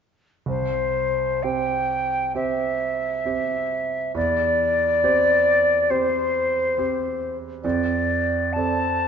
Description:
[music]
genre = classical, romantic duo for flute and grand piano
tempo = 60-71 BPM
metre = 4/4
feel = rubato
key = C major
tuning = A4 = 438 Hz
[part]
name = silver concert flute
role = melody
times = 0.5-9.1 s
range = C5 to A5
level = -21 LUFS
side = left 2 dB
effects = none
[part]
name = clear concert grand piano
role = accompaniment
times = 0.5-9.1 s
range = C2 to D5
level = -26 LUFS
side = right 5 dB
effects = none
[sound]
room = wet recital hall reverb, RT60 1.4 s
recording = nothing above 7.5 kHz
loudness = -20 LUFS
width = side -7 dB against mid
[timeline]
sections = 0.5-9.1 A section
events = none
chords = 0.5 C; 4.2 C/E; 7.6 Dm7/F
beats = | 0.47 1.44 2.36 3.26 | 4.16 5.03 5.90 6.78 | 7.64 8.55

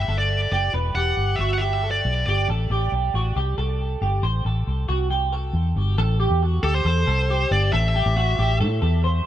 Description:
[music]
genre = jangly indie pop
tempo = 137 BPM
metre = 4/4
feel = straight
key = A dorian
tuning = A4 = 442 Hz
[part]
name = high-gain lead guitar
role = melody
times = 0.0-2.5, 6.6-8.6 s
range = A4 to F#5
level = -26 LUFS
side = left 1 dB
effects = distortion, dub echo
[part]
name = twelve-string electric guitar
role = arpeggios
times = 0.0-9.3 s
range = F#4 to C5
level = -26 LUFS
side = right 2 dB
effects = wide subtle chorus, dub echo
[part]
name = vintage muted fingered electric bass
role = bass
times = 0.0-9.2 s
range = E1 to A2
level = -22 LUFS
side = equal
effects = none
[sound]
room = light reverb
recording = echo-heavy mix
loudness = -19 LUFS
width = side -12 dB against mid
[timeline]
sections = 0.0-6.0 A section; 6.0-9.3 B section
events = none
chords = 0.0 Em; 2.5 Am7; 6.0 Am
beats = 0.30 | 0.73 1.17 1.61 2.05 | 2.48 2.92 3.36 3.80 | 4.23 4.67 5.11 5.54 | 5.98 6.42 6.86 7.29 | 7.73 8.17 8.61 9.04

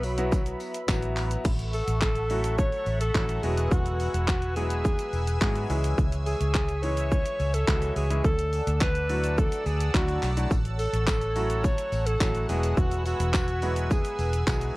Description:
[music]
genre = dance-pop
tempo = 106 BPM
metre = 4/4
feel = straight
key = A major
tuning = A4 = 440 Hz
[part]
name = breathy alto saxophone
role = melody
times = 0.0-14.8 s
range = F#3 to C#5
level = -30 LUFS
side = equal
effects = analog delay
[part]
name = clear baby grand piano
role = accompaniment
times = 0.0-14.8 s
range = E3 to G#4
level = -34 LUFS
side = left 1 dB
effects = sidechain pumping
[part]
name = sweeping resonant pad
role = sustained chords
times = 0.0-14.8 s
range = F#4 to E6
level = -37 LUFS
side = equal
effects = chorus, sidechain pumping
[part]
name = vintage muted fingered electric bass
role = bass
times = 0.0-14.7 s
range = E1 to G#2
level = -28 LUFS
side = equal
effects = sidechain pumping
[part]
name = house drum kit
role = drums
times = 0.0-14.7 s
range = crash cymbal, handclaps, hi-hat, kick drum, shaker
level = -27 LUFS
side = equal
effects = none
[part]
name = tambourine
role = percussion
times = 0.0-1.3, 10.5-14.6 s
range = none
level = -46 LUFS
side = left 3 dB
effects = none
[sound]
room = little or no reverb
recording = cassette tape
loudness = -24 LUFS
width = side -20 dB against mid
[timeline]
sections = 0.0-1.5 A section; 1.5-14.8 B section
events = none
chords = 0.0 Esus2; 1.5 A6; 3.4 Eadd9; 5.7 C#m; 8.2 Dadd9; 10.5 A6; 12.5 Eadd9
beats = 0.32 0.89 | 1.45 2.02 2.58 3.15 | 3.72 4.28 4.85 5.41 | 5.98 6.55 7.11 7.68 | 8.24 8.81 9.38 9.94 | 10.51 11.07 11.64 12.21 | 12.77 13.34 13.90 14.47

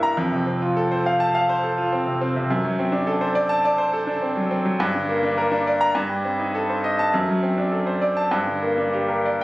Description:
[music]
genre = classical, virtuoso piano study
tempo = 103 BPM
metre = 4/4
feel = rubato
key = unclear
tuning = A4 = 440 Hz
[part]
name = clear concert grand piano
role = solo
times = 0.0-9.4 s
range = F2 to Bb5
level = -19 LUFS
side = equal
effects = none
[sound]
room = moderate recital hall reverb, RT60 1.6 s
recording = recorded on a phone in the room, studio reverb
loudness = -19 LUFS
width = side -19 dB against mid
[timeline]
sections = 0.0-9.4 A section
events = none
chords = 0.2 F; 2.5 D7/F#; 4.8 Gm; 6.0 Am7b5/G; 7.1 D7/F#; 8.3 Gm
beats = | 0.18 0.77 1.35 1.92 | 2.50 3.08 3.65 4.23 | 4.81 5.38 5.96 6.54 | 7.13 7.72 8.31 8.93

